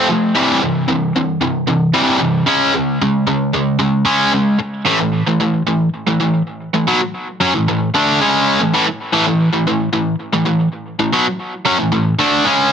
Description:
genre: rock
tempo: 113 BPM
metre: 4/4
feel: straight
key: A major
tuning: A4 = 437 Hz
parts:
  - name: distorted electric guitar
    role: solo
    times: 0.0-12.7 s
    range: A2 to D4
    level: -13 LUFS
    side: equal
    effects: overdrive, analog delay
room: moderate studio reverb, RT60 0.5 s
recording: dense, heavily limited modern master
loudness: -13 LUFS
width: side -7 dB against mid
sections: 0.0-4.6 A section; 4.6-12.7 B section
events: none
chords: 0.3 C; 2.5 C#5; 4.6 A

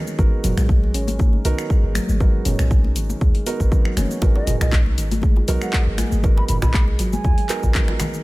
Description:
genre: afro house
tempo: 119 BPM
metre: 4/4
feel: swing 54% on 16ths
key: G# minor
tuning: A4 = 439 Hz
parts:
  - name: handpan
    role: arpeggios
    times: 0.0-8.1 s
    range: D#3 to G#4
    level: -28 LUFS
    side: equal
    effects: sidechain pumping, digital delay
  - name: felt-muted upright piano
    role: stabs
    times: 0.0-8.2 s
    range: B3 to A#4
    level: -30 LUFS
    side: right 5 dB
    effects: sidechain pumping, digital delay
  - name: house drum kit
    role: drums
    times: 0.1-8.2 s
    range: finger snaps, handclaps, hi-hat, shaker, toms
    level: -27 LUFS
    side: equal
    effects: none
  - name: warm 808-style bass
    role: bass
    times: 0.2-7.7 s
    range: F#1 to D#2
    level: -22 LUFS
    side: equal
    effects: sidechain pumping
  - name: electronic kick drum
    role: drums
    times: 0.2-7.9 s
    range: none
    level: -17 LUFS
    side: equal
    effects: none
  - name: congas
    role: percussion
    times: 0.2-8.1 s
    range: none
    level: -30 LUFS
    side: left 3 dB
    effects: none
  - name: djembe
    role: percussion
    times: 4.2-8.1 s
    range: none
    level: -30 LUFS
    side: right 1 dB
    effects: none
  - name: mellow bansuri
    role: melody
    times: 4.4-7.8 s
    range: D#5 to B5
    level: -31 LUFS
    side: right 2 dB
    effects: digital delay
room: small room ambience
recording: none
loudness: -16 LUFS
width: side -20 dB against mid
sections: 0.0-8.2 A section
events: none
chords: 0.0 G#m7

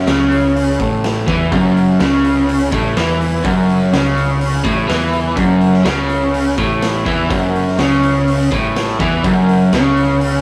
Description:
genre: garage rock duo or trio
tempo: 124 BPM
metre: 4/4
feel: straight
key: unclear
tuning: A4 = 440 Hz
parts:
  - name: crunchy overdriven guitar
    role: riff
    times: 0.0-10.4 s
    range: F#2 to E3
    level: -16 LUFS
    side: equal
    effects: none
  - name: fuzz picked electric bass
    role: bass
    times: 0.0-10.4 s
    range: F#1 to E2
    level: -24 LUFS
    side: equal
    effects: overdrive
  - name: raw garage drum kit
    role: drums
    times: 0.1-10.3 s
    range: hi-hat, kick drum, snare drum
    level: -25 LUFS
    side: equal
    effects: none
room: moderate stone room reverb, RT60 1.4 s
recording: rough rehearsal-room recording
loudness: -15 LUFS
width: mono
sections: 0.0-10.4 A section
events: none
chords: 0.0 F#5

